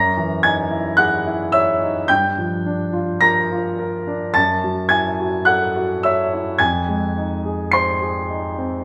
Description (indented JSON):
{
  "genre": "classical, impressionist solo piano",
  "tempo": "53 BPM",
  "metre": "4/4",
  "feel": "rubato",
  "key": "unclear",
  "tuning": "A4 = 440 Hz",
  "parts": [
    { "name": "warm grand piano", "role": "solo", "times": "0.0-8.8 s", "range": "F2 to C7", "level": "-19 LUFS", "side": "equal", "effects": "none" }
  ],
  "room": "wet recital hall reverb, RT60 1.6 s",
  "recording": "none",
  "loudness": "-19 LUFS",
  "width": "mono",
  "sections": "0.0-8.8 A section",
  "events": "none",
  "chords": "0.0 Gb13; 2.1 Gm7; 4.4 Gbm7; 6.6 Fm7"
}